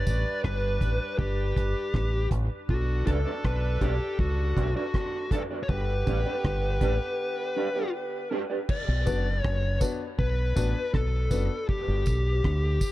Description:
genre	dub reggae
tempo	80 BPM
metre	4/4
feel	straight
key	B minor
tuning	A4 = 440 Hz
part	fuzz lead guitar	melody	0.0-12.9 s	F#4 to D5	-31 LUFS	left 2 dB	distortion, dub echo
part	warm horn section	second line	0.0-8.3 s	D3 to B4	-36 LUFS	right 4 dB	dub echo
part	deep dub fingered electric bass	bass	0.0-12.8 s	F#1 to D2	-27 LUFS	equal	none
part	deep reggae drum kit	drums	0.1-12.9 s	crash cymbal, hi-hat, kick drum, rim click	-30 LUFS	equal	none
part	tambourine	percussion	0.1-0.2, 9.1-12.9 s	none	-44 LUFS	right 3 dB	none
part	electric guitar at the edge of break-up	accompaniment	3.1-8.6 s	D4 to D5	-35 LUFS	right 4 dB	ensemble chorus, dub echo
part	warm upright piano	stabs	9.1-11.5 s	B3 to B4	-35 LUFS	left 4 dB	dub echo
room	light reverb, small room ambience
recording	none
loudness	-25 LUFS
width	side -16 dB against mid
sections	0.0-8.7 A section; 8.7-12.9 B section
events	break 0.0-8.7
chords	0.0 G; 2.7 Bm; 5.7 G; 8.7 Bm; 11.7 G

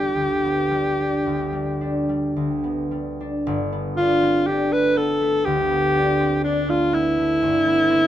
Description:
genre	classical, impressionist duo for alto saxophone and harp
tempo	53-62 BPM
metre	4/4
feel	rubato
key	unclear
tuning	A4 = 439 Hz
part	clear alto saxophone	melody	0.0-8.1 s	D4 to B4	-20 LUFS	equal	none
part	concert harp	accompaniment	0.0-8.1 s	G1 to D4	-23 LUFS	equal	none
room	light reverb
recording	minimal, uncompressed stereo recording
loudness	-19 LUFS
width	side -11 dB against mid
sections	0.0-3.4 A section; 3.4-8.1 A section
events	none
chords	0.0 G; 3.4 Am11/G

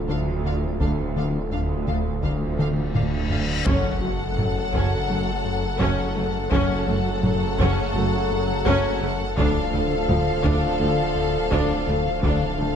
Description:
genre	cinematic, hybrid orchestral and electronic film score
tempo	84 BPM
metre	4/4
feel	straight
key	F# harmonic minor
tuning	A4 = 440 Hz
part	warm French horn section	sustained chords	0.0-12.8 s	A3 to A4	-32 LUFS	left 3 dB	none
part	detuned saw bass	bass	0.0-12.8 s	D1 to F#1	-30 LUFS	equal	none
part	warm symphonic violin section	melody	0.1-12.8 s	F5 to F#5	-31 LUFS	left 5 dB	none
part	warm symphonic violin section	second line	0.1-12.8 s	A4	-33 LUFS	left 2 dB	none
part	rich symphonic viola section	accompaniment	0.1-12.7 s	F3 to D4	-28 LUFS	equal	none
part	fat analog bass	riff	0.1-12.8 s	D2 to F#3	-28 LUFS	left 3 dB	none
part	rich symphonic cello section	bass	0.1-12.7 s	D2 to F#2	-30 LUFS	right 3 dB	none
part	rich symphonic double bass section	bass	0.1-12.7 s	F#1 to D2	-29 LUFS	right 4 dB	none
part	solo taiko drums	drums	0.8-12.8 s	none	-28 LUFS	equal	none
part	reverse cymbal and impact	sound effects	2.8-6.5 s	none	-33 LUFS	left 1 dB	none
part	warm trombone section	sustained chords	3.7-12.8 s	C#3 to F#3	-30 LUFS	right 3 dB	none
room	moderate scoring stage reverb, RT60 1.5 s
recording	dark, warm production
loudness	-20 LUFS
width	side -8 dB against mid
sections	0.0-3.7 A section; 3.7-12.8 B section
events	drum fill 2.6-3.7; reverse cymbal 2.8-3.7; impact 3.7-6.5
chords	0.0 Dm; 3.7 F#m; 9.4 Dm

